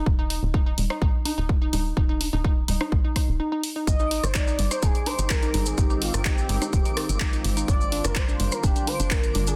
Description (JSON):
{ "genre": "progressive house", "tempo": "126 BPM", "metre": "4/4", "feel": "straight", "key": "Eb major", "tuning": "A4 = 438 Hz", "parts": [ { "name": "glassy wavetable pluck", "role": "arpeggios", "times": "0.0-9.6 s", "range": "D4 to Eb4", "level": "-35 LUFS", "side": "equal", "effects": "chorus, sidechain pumping, tape echo" }, { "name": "tight sequencer bass", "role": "bass", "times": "0.0-9.5 s", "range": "Eb1 to Bb1", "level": "-30 LUFS", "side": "equal", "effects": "sidechain pumping" }, { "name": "electronic kick drum", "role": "drums", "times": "0.1-9.2 s", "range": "none", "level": "-26 LUFS", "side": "equal", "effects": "studio reverb" }, { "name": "house drum kit", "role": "drums", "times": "0.3-9.6 s", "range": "handclaps, hi-hat, rim click", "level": "-33 LUFS", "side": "equal", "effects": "studio reverb, soft clipping on snare" }, { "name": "electronic congas and rim click", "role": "percussion", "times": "0.8-9.4 s", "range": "none", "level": "-34 LUFS", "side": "equal", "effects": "overdrive, sidechain pumping on perc, studio reverb, sidechain pumping on snare" }, { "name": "expressive portamento lead", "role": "melody", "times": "3.9-9.6 s", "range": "F4 to Eb5", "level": "-33 LUFS", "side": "equal", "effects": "lush chorus, tape echo" }, { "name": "evolving wavetable pad", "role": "sustained chords", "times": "4.6-9.6 s", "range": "D3 to G4", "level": "-37 LUFS", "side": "equal", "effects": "ensemble chorus, built-in reverb, sidechain pumping" }, { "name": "cabasa", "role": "percussion", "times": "3.9-9.6 s", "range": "none", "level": "-38 LUFS", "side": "equal", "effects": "none" }, { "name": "twinkling granular texture", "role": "texture", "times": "4.1-9.6 s", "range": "D6", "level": "-42 LUFS", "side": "equal", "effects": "built-in reverb, sidechain pumping" } ], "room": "little or no reverb", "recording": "dense, heavily limited modern master", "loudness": "-24 LUFS", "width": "mono", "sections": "0.0-9.6 A section", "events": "break 3.4-3.9", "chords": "0.1 Eb5; 3.9 Abmaj7; 7.7 Gm7", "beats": "| 0.06 0.54 1.02 1.49 | 1.97 2.44 2.92 3.40 | 3.87 4.35 4.83 5.30 | 5.78 6.25 6.73 7.21 | 7.68 8.16 8.64 9.11" }